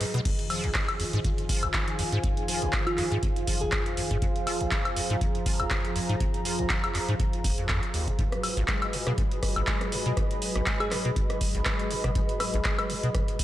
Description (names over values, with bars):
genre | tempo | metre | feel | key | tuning
acid house | 121 BPM | 4/4 | swing 55% on 16ths | F phrygian | A4 = 441 Hz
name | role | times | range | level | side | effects
warm analog pad | sustained chords | 0.0-13.4 s | F2 to Cb5 | -36 LUFS | right 1 dB | chorus, sidechain pumping
acid bass, square | riff | 0.0-13.2 s | F1 to Ab3 | -32 LUFS | equal | ensemble chorus, sidechain pumping
booming analog drum machine | drums | 0.0-13.4 s | crash cymbal, handclaps, hi-hat, rim click, woodblock | -31 LUFS | equal | none
warbly tape-like pad | texture | 0.0-13.4 s | F4 to Cb6 | -34 LUFS | equal | chorus, built-in reverb, sidechain pumping
electronic kick drum | drums | 0.3-13.4 s | none | -29 LUFS | equal | none
bell-like FM electric piano | melody | 2.9-4.1, 10.8-11.0 s | F4 to Ab4 | -34 LUFS | right 1 dB | chorus, analog delay
room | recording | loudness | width
light reverb | none | -25 LUFS | side -14 dB against mid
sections
0.0-13.4 A section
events
break 0.0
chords
0.3 Fm7; 8.2 Abm7